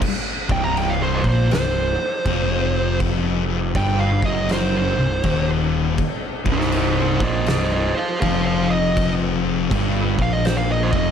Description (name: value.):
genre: stoner and doom metal.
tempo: 80 BPM.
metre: 4/4.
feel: swing 64% on 8ths.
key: C minor.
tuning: A4 = 440 Hz.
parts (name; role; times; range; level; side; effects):
oversized low-tuned drum kit; drums; 0.0-11.1 s; crash cymbal, kick drum, snare drum; -25 LUFS; equal; none.
fuzz lead guitar; melody; 0.5-11.1 s; Eb4 to Bb5; -23 LUFS; right 2 dB; distortion, slapback echo.
fuzz guitar; riff; 0.5-11.1 s; C2 to Bb2; -25 LUFS; right 7 dB; distortion.
thick fuzz guitar; riff; 0.5-11.1 s; C2 to Bb2; -24 LUFS; left 10 dB; distortion.
fuzz picked electric bass; bass; 0.5-11.1 s; C1 to Bb1; -24 LUFS; equal; overdrive.
room: light reverb, studio reverb.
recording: none.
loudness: -18 LUFS.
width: side -8 dB against mid.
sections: 0.0-11.1 A section.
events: lead electric guitar solo 0.0-11.1.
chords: 0.0 Cm.